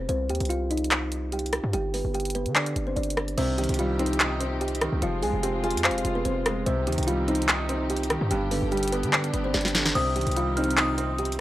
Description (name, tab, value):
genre	hip hop, trap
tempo	146 BPM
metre	4/4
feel	half-time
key	C harmonic minor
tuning	A4 = 441 Hz
part	kalimba	melody	0.0-11.4 s	B3 to Ab5	-29 LUFS	equal	analog delay
part	hard-hitting 808-style bass	bass	0.0-11.4 s	F1 to D3	-29 LUFS	equal	none
part	trap drum kit	drums	0.1-11.4 s	crash cymbal, handclaps, hi-hat, rim click, snare drum	-26 LUFS	equal	none
part	clear concert grand piano	accompaniment	3.4-11.4 s	G2 to F5	-30 LUFS	right 1 dB	none
part	dark symphonic string section	sustained chords	3.4-11.4 s	C3 to G4	-35 LUFS	left 1 dB	none
part	glassy synth bell	second line	10.0-11.2 s	Eb6 to F6	-29 LUFS	left 1 dB	chorus, analog delay
room	studio ambience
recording	dry, gritty hardware recording, cassette tape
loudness	-23 LUFS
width	side -15 dB against mid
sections	0.0-3.4 A section; 3.4-11.4 B section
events	drum fill 9.5-10.0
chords	0.1 Cm; 1.7 G; 3.4 Cm; 5.0 Fm; 6.7 Cm; 8.3 G; 10.0 Cm